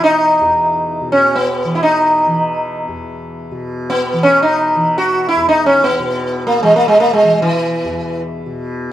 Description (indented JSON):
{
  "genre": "indian classical, Hindustani",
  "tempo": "free time",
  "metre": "none",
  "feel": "none",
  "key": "E raga yaman",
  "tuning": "A4 = 440 Hz",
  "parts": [
    { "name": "sitar", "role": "melody", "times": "0.0-8.2 s", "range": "E3 to F#4", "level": "-12 LUFS", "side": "equal", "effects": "none" },
    { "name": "tanpura", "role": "drone", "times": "0.0-8.9 s", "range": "E2 to E3", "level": "-23 LUFS", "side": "equal", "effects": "none" }
  ],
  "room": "wet studio reverb, RT60 0.5 s",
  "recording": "heard from further back in the room",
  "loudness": "-12 LUFS",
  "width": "side -12 dB against mid",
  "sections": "0.0-8.9 A section",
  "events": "none",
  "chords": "none"
}